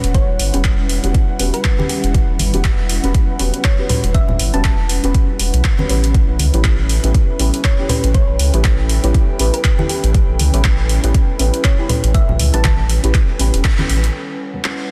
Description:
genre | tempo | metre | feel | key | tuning
deep house | 120 BPM | 4/4 | swing 57% on 16ths | unclear | A4 = 441 Hz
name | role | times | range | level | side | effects
thumb-piano-like synth pluck | melody | 0.0-12.9 s | G4 to A5 | -29 LUFS | equal | chorus, delay
warbly tape-like pad | sustained chords | 0.0-14.9 s | G3 to F#5 | -32 LUFS | equal | chorus, built-in reverb, sidechain pumping
deep mellow chord stab | stabs | 0.0-14.7 s | E3 to B4 | -27 LUFS | equal | chorus, phaser, sidechain pumping, delay
round analog bass | bass | 0.0-14.1 s | E1 to C#2 | -19 LUFS | equal | sidechain pumping
deep house drum kit | drums | 0.0-14.8 s | handclaps, hi-hat | -25 LUFS | equal | studio ambience
airy breathy pad | texture | 0.0-14.9 s | G3 to G5 | -32 LUFS | equal | chorus, sidechain pumping
electronic kick drum | drums | 0.1-13.8 s | none | -17 LUFS | equal | studio ambience
congas | percussion | 1.8-13.9 s | none | -25 LUFS | equal | none
room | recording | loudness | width
light reverb | dense, heavily limited modern master | -16 LUFS | mono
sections
0.0-14.1 A section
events
band accent 13.6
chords
0.0 Em69; 6.1 A9; 14.1 A9 (rootless)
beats
| 0.14 0.65 1.15 1.65 | 2.15 2.65 3.15 3.65 | 4.14 4.64 5.14 5.64 | 6.14 6.64 7.14 7.64 | 8.14 8.64 9.14 9.64 | 10.14 10.64 11.14 11.64 | 12.14 12.64 13.14 13.64 | 14.14 14.64

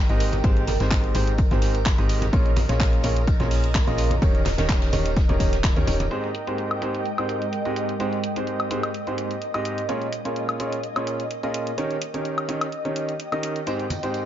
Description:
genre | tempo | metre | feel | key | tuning
piano house | 127 BPM | 4/4 | swing 54% on 16ths | Ab major | A4 = 437 Hz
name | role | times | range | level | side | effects
solid FM bass | bass | 0.0-6.1 s | Eb1 to Eb2 | -24 LUFS | equal | sidechain pumping
ethereal airy pad | texture | 0.0-14.3 s | Ab3 to Ab5 | -30 LUFS | right 1 dB | ensemble chorus, built-in reverb, tremolo, sidechain pumping
clear concert grand piano | riff | 0.1-14.3 s | Ab2 to Eb5 | -27 LUFS | right 1 dB | sidechain pumping, digital delay
house drum kit | drums | 0.1-14.2 s | handclaps, hi-hat, woodblock | -31 LUFS | left 2 dB | low-pass filter on hats, low-pass filter on snare, low-pass filter on perc, low-pass filter on room
tambourine and congas | percussion | 0.1-6.1, 13.7-14.2 s | none | -33 LUFS | right 2 dB | none
unplugged drum kit | drums | 0.2-6.0 s | hi-hat, ride cymbal, snare drum | -38 LUFS | left 2 dB | sidechain pumping on cymbals, high-pass filter on cymbals, sidechain pumping on hats, high-pass filter on hats, high-pass filter on snare, high-pass filter on room
electronic kick drum | drums | 0.4-5.7 s | none | -22 LUFS | equal | none
room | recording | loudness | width
light reverb, small room ambience | nothing above 7.5 kHz | -21 LUFS | side -11 dB against mid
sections
0.0-6.1 A section; 6.1-14.3 B section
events
none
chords
0.0 Abmaj7; 2.3 Bbm7; 4.2 Eb7; 6.1 Abmaj7; 9.9 Bbm7; 11.8 Eb7; 13.7 Abmaj7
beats
| 0.44 0.91 1.39 1.86 | 2.33 2.80 3.27 3.75 | 4.22 4.69 5.17 5.64 | 6.11 6.58 7.05 7.53 | 8.00 8.47 8.95 9.42 | 9.89 10.36 10.83 11.31 | 11.78 12.25 12.72 13.20 | 13.67 14.14

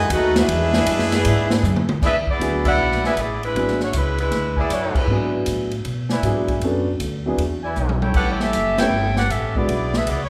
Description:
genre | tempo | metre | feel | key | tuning
jazz, big band swing | 156 BPM | 4/4 | swing 66% on 8ths | E mixolydian | A4 = 439 Hz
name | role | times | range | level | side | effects
brilliant trumpet section | melody | 0.0-1.9 s | D4 to F#5 | -26 LUFS | equal | none
bright trombone section | second line | 0.0-1.9 s | G#3 to F#4 | -24 LUFS | equal | none
warm saxophone section | sustained chords | 0.0-1.6 s | E3 to G#4 | -30 LUFS | equal | none
upright bass | bass | 0.0-10.3 s | F#1 to B2 | -26 LUFS | equal | none
swinging big-band drum kit | drums | 0.1-10.2 s | crash cymbal, hi-hat, kick drum, ride cymbal, snare drum, toms | -27 LUFS | equal | none
bright saxophone section | melody | 2.0-5.4, 8.2-10.3 s | G#3 to G5 | -24 LUFS | equal | none
mellow trumpet section | stabs | 2.0-8.9 s | E4 to G#5 | -30 LUFS | equal | none
warm grand piano | accompaniment | 2.4-9.7 s | F#3 to A4 | -27 LUFS | equal | none
room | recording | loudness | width
wet recital hall reverb, RT60 1.4 s | recorded in a church or concert hall | -20 LUFS | mono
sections
0.0-2.0 A section; 2.0-10.3 B section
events
drum fill 1.6-2.0, 7.8-8.2; band accent 2.6, 4.9, 8.7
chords
0.5 E7; 6.6 Bm7; 7.4 E7; 8.2 A7; 9.7 E7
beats
0.11 | 0.49 0.87 1.26 1.64 | 2.02 2.41 2.79 3.17 | 3.56 3.94 4.32 4.71 | 5.09 5.47 5.86 6.24 | 6.62 7.01 7.39 7.78 | 8.16 8.54 8.93 9.31 | 9.69 10.08

